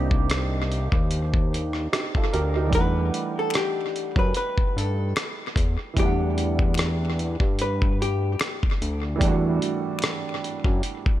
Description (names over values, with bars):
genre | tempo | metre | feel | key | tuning
lo-fi hip hop | 74 BPM | 4/4 | swing 55% on 16ths | E minor | A4 = 439 Hz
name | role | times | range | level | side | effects
warm upright piano | accompaniment | 0.0-11.2 s | E3 to F#5 | -29 LUFS | right 5 dB | cassette tape, tape echo
fat analog bass | bass | 0.0-10.8 s | C2 to G2 | -25 LUFS | equal | none
dusty soul sampler-style drum kit | drums | 0.1-11.2 s | hi-hat, kick drum, rim click | -24 LUFS | equal | vintage 12-bit sampler grit, tape echo
hollow-body jazz guitar | melody | 2.7-8.6 s | G4 to B4 | -28 LUFS | left 2 dB | tape echo
finger snaps | percussion | 3.5-10.2 s | none | -40 LUFS | left 7 dB | none
room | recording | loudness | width
light reverb, digital ambience | echo-heavy mix | -22 LUFS | side -13 dB against mid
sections
0.0-11.2 A section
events
none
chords
0.0 Cm11; 2.7 Em11